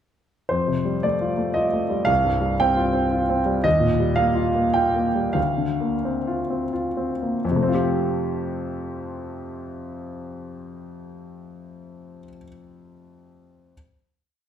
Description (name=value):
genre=neoclassical minimalist piano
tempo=83-117 BPM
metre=3/4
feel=rubato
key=F mixolydian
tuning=A4 = 440 Hz
part: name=clear grand piano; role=solo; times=0.5-13.7 s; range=C2 to G5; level=-21 LUFS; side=equal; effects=none
room=wet recital hall reverb, RT60 1.3 s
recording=recorded in a church or concert hall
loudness=-20 LUFS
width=side -9 dB against mid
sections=0.5-7.4 A section; 7.4-11.5 final chord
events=slowing down 2.9-7.4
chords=0.5 Fadd9; 2.1 Csus4; 3.7 Ebadd9; 5.4 Bbadd9/D; 7.4 Fadd9